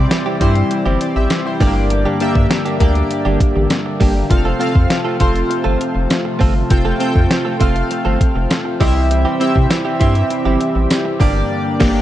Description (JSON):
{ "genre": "1980s-style pop", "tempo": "100 BPM", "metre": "4/4", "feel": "straight", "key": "F major", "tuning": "A4 = 440 Hz", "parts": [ { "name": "chorused retro synth keys", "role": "accompaniment", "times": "0.0-12.0 s", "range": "G2 to G5", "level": "-18 LUFS", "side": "left 1 dB", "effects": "none" }, { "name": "chorused pulse-width pad", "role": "sustained chords", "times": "0.0-12.0 s", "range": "C3 to G4", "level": "-24 LUFS", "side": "left 1 dB", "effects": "none" }, { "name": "round analog bass", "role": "bass", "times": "0.0-12.0 s", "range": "F1 to C3", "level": "-17 LUFS", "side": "equal", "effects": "none" }, { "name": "direct-recorded clean electric guitar", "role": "riff", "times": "0.1-12.0 s", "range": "G3 to A4", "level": "-24 LUFS", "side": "right 5 dB", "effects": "analog chorus, digital delay" }, { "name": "clean 12-bit digital drum machine", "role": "drums", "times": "0.1-12.0 s", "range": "crash cymbal, hi-hat, kick drum, snare drum, tambourine", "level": "-16 LUFS", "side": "equal", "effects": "none" }, { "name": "mellow synth brass", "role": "stabs", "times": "3.3-4.3, 11.8-12.0 s", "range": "D3 to G4", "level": "-23 LUFS", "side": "left 2 dB", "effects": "chorus" } ], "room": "light reverb, digital ambience", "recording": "dark, warm production, nothing above 10.8 kHz", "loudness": "-13 LUFS", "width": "side -13 dB against mid", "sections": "0.0-12.0 A section", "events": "band accent 1.9-4.3, 11.5-12.0", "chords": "0.0 C; 1.6 Gm; 4.3 F; 8.8 C; 11.2 Gm" }